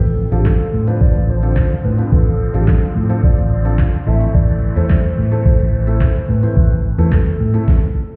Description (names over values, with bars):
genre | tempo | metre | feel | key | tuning
dance-pop | 108 BPM | 4/4 | straight | A minor | A4 = 440 Hz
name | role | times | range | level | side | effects
hollow clarinet-like synth lead | melody | 0.0-8.2 s | G4 to E5 | -28 LUFS | equal | chorus, delay
filtered supersaw swell | sustained chords | 0.0-7.6 s | D3 to C4 | -30 LUFS | equal | phaser, sidechain pumping
vintage muted fingered electric bass | bass | 0.0-7.6 s | A1 to A2 | -18 LUFS | equal | sidechain pumping
smooth R&B drum kit | drums | 0.0-7.8 s | handclaps, hi-hat, kick drum, snare drum | -16 LUFS | equal | none
warm concert grand piano | accompaniment | 0.3-7.7 s | A3 to C5 | -28 LUFS | equal | sidechain pumping
room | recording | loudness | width
digital ambience | heard muffled through a wall, stone room reverb, EQ | -15 LUFS | mono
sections
0.0-8.2 A section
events
none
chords
0.0 Dm7/A; 4.1 Am